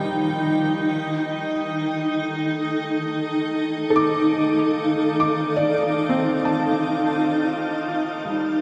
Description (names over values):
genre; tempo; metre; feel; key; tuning
ambient; free time; none; none; unclear; A4 = 440 Hz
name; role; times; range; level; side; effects
granular cloud pad; sustained chords; 0.0-8.6 s; Eb4 to G5; -24 LUFS; equal; built-in reverb
felt-muted upright piano; arpeggios; 0.0-8.6 s; F3 to D6; -28 LUFS; equal; tape echo
bowed-like drone; drone; 0.0-8.6 s; Eb3 to Eb4; -40 LUFS; equal; none
room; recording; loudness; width
wet shimmer reverb, RT60 8.6 s; none; -22 LUFS; mono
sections
0.0-7.6 A section; 7.6-8.6 B section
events
none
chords
0.0 Eb; 0.9 Dm/Eb; 7.6 Ebmaj7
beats
free time